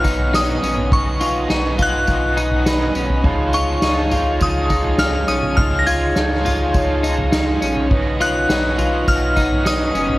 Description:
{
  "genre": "dream pop",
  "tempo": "103 BPM",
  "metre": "4/4",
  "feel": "straight",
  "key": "unclear",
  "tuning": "A4 = 441 Hz",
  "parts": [
    { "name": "glassy synth bell", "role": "melody", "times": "0.0-10.2 s", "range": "Db6 to Bb6", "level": "-22 LUFS", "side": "left 1 dB", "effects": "chorus, digital delay, shimmer reverb" },
    { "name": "biting overdriven guitar", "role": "accompaniment", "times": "0.0-10.2 s", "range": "Cb3 to Gb4", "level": "-26 LUFS", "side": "right 2 dB", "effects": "tremolo, ensemble chorus, shimmer reverb" },
    { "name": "pipe organ, sparkling flutes", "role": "sustained chords", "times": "0.0-10.2 s", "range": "Eb4 to F5", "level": "-23 LUFS", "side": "right 1 dB", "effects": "shimmer reverb" },
    { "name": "clean electric guitar", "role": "arpeggios", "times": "0.0-10.2 s", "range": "Db4 to F4", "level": "-23 LUFS", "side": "left 2 dB", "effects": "analog chorus, digital delay, shimmer reverb" },
    { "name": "sub bass with octave", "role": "bass", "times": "0.0-10.2 s", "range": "Gb1 to Db2", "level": "-23 LUFS", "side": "equal", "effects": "none" },
    { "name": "soft-mallet drum kit", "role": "drums", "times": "0.0-10.2 s", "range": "kick drum, snare drum, tambourine, toms", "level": "-21 LUFS", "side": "equal", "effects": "none" },
    { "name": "vibraphone with soft mallets", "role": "texture", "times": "2.7-8.0 s", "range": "Db5 to Cb6", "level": "-32 LUFS", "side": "right 1 dB", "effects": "digital delay, shimmer reverb" }
  ],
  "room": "light reverb, small room ambience",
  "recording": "worn, warbling old tape, cassette tape, warbly pitch drift",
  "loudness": "-15 LUFS",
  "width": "side -18 dB against mid",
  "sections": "0.0-10.2 A section",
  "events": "none",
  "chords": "0.0 Cbadd9; 3.2 Dbadd9; 7.9 Cbadd9"
}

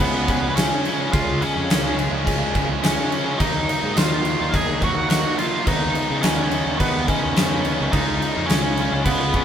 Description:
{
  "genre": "quiet-loud alternative rock",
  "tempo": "106 BPM",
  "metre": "4/4",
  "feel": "straight",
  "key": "unclear",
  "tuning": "A4 = 440 Hz",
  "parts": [
    { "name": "octave-fuzz lead guitar", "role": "melody", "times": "0.0-9.4 s", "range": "B3 to G#5", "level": "-24 LUFS", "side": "right 1 dB", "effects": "distortion" },
    { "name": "distorted electric guitar", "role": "riff", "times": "0.0-9.4 s", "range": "C#3 to E#4", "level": "-30 LUFS", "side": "right 6 dB", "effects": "overdrive" },
    { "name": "overdriven electric guitar", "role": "riff", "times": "0.0-9.4 s", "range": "C#3 to G#4", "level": "-28 LUFS", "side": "left 6 dB", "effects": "none" },
    { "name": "tight distorted guitar", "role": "riff", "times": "0.0-9.4 s", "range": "C#3 to E#4", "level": "-29 LUFS", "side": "equal", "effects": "distortion" },
    { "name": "fuzz fingered electric bass", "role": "bass", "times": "0.0-9.4 s", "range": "C#2 to C#3", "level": "-27 LUFS", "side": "equal", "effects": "overdrive" },
    { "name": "huge arena drum kit", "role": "drums", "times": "0.0-9.4 s", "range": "crash cymbal, kick drum, snare drum", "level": "-22 LUFS", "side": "equal", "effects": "none" }
  ],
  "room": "light reverb",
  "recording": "band playing live in one room",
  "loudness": "-18 LUFS",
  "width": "side -9 dB against mid",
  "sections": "0.0-9.4 A section",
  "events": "none",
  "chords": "0.0 C#; 3.4 D#madd9; 5.7 G#m/D#; 7.9 C#"
}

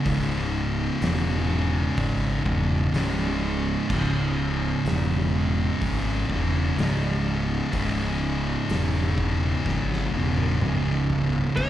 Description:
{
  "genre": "stoner and doom metal",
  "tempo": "62 BPM",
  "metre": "4/4",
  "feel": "straight",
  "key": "C# minor",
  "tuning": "A4 = 440 Hz",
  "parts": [
    { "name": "thick fuzz guitar", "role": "riff", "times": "0.0-11.7 s", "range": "C#2 to C#3", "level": "-26 LUFS", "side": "left 3 dB", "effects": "distortion, slapback echo" },
    { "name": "thick fuzz guitar", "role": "riff", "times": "0.0-11.7 s", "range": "C#2 to C#3", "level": "-30 LUFS", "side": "right 8 dB", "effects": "distortion" },
    { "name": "fuzz fingered electric bass", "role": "bass", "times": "0.1-11.7 s", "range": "C#1 to G#1", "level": "-27 LUFS", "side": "equal", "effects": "overdrive" },
    { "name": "oversized low-tuned drum kit", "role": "drums", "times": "0.1-11.7 s", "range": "crash cymbal, hi-hat, kick drum, snare drum, toms", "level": "-31 LUFS", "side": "equal", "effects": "none" },
    { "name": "fuzz lead guitar", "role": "melody", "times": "11.6-11.7 s", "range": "C#5", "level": "-25 LUFS", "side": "right 1 dB", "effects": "distortion" }
  ],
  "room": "small room ambience",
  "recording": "live gig heard through the venue's PA, club reverb",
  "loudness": "-22 LUFS",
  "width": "side -12 dB against mid",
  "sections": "0.0-11.6 A section",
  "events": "drum fill 9.7-11.6",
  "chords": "0.0 C#m"
}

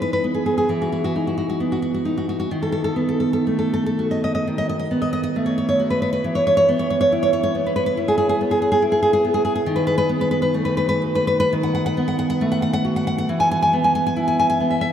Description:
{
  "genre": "romantic piece for solo classical guitar",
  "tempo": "55-73 BPM",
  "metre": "4/4",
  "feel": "rubato",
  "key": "unclear",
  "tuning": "A4 = 444 Hz",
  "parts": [
    { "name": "nylon-string guitar", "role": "solo", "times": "0.0-14.9 s", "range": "D#3 to G#5", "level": "-18 LUFS", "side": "equal", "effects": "none" }
  ],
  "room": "wet cathedral reverb, RT60 5.6 s",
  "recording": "in a vast, echoing space",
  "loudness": "-18 LUFS",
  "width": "side -9 dB against mid",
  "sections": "0.0-14.9 A section",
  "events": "none",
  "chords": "0.0 B/E; 2.5 B7/D#; 6.2 E5; 9.7 B7/D#; 13.3 E5"
}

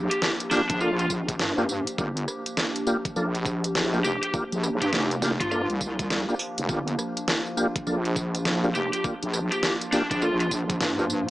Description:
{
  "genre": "glitch hop",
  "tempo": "102 BPM",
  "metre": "4/4",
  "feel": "swing 63% on 16ths",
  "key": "G minor",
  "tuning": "A4 = 440 Hz",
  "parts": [
    { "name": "warbly tape-like pad", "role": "sustained chords", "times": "0.0-11.3 s", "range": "F3 to G4", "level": "-33 LUFS", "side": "equal", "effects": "chorus, built-in reverb, phaser, sidechain pumping" },
    { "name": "wobble bass", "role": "bass", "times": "0.0-11.3 s", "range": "F1 to G2", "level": "-27 LUFS", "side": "equal", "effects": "chorus" },
    { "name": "downlifter", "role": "sound effects", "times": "0.0-2.0 s", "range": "none", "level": "-46 LUFS", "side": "equal", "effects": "none" },
    { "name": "lead guitar through a small cranked amp", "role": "melody", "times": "0.1-10.5 s", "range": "D4 to G4", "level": "-29 LUFS", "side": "left 1 dB", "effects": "overdrive, digital delay" },
    { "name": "pop drum kit", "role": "drums", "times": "0.1-11.2 s", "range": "hi-hat, rim click, snare drum, tambourine", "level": "-28 LUFS", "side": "equal", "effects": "overdrive" },
    { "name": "tonewheel organ", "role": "stabs", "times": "0.5-11.1 s", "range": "Bb3 to A4", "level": "-29 LUFS", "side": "equal", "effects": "chorus vibrato, slow rotary speaker, sidechain pumping, digital delay" },
    { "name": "electronic kick drum", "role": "drums", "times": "0.7-10.8 s", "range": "none", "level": "-31 LUFS", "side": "equal", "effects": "overdrive" }
  ],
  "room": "light reverb",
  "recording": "small speaker sound",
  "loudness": "-23 LUFS",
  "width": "side -16 dB against mid",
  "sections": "0.0-11.3 A section",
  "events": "none",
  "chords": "0.0 Gm7"
}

